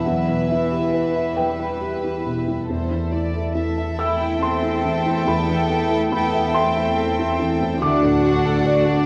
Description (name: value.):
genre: cinematic, emotional film score for orchestra.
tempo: 46 BPM (dotted quarters).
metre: 6/8.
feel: rubato.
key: unclear.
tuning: A4 = 440 Hz.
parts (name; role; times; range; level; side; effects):
warm symphonic violin section; melody; 0.0-9.1 s; B4 to G5; -30 LUFS; equal; none.
warm symphonic violin section; second line; 0.0-9.1 s; A3 to E5; -28 LUFS; equal; none.
dark symphonic viola section; accompaniment; 0.0-9.1 s; E3 to F#4; -30 LUFS; equal; none.
felt-muted upright piano; accompaniment; 0.0-9.1 s; D2 to E6; -26 LUFS; equal; none.
concert harp; arpeggios; 0.0-9.1 s; D3 to B5; -32 LUFS; equal; none.
dark symphonic double bass section; bass; 0.0-8.9 s; D2 to E2; -31 LUFS; equal; none.
rich symphonic cello section; bass; 0.0-9.1 s; E3 to E4; -29 LUFS; equal; none.
room: moderate scoring stage reverb, RT60 1.6 s.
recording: worn, warbling old tape, cassette tape, warbly pitch drift.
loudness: -21 LUFS.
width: mono.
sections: 0.0-9.1 A section.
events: none.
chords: 0.0 Em; 2.7 Am/E; 7.8 D.